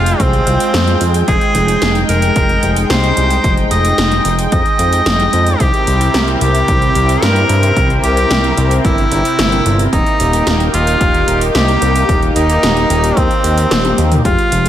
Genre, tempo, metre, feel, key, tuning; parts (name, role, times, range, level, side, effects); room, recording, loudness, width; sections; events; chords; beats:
synthwave; 111 BPM; 4/4; straight; F minor; A4 = 440 Hz
edgy tenor saxophone; melody; 0.0-14.7 s; C4 to Eb5; -16 LUFS; equal; vintage 12-bit sampler grit, tape echo
lush unison pad; sustained chords; 0.0-14.7 s; C3 to G5; -18 LUFS; equal; chorus, sidechain pumping
fat analog bass; bass; 0.0-14.7 s; Eb1 to G2; -15 LUFS; equal
80s electronic pad drums; drums; 0.1-14.7 s; hi-hat, snare drum, toms; -19 LUFS; equal; gated reverb on snare and toms, overdrive
electronic kick drum; drums; 0.2-14.4 s; -17 LUFS; equal; overdrive
mellow FM electric piano; stabs; 14.2-14.7 s; Ab3 to Ab4; -20 LUFS; left 2 dB; chorus, cassette tape
light reverb; -10 LUFS; side -11 dB against mid
0.0-14.3 A section
drum fill 13.7-14.3
0.0 Fmadd9; 5.6 C7; 9.9 Eb
0.20 0.74 | 1.28 1.82 2.36 2.90 | 3.44 3.98 4.52 5.06 | 5.60 6.14 6.68 7.22 | 7.76 8.30 8.85 9.39 | 9.93 10.47 11.01 11.55 | 12.09 12.63 13.17 13.71 | 14.25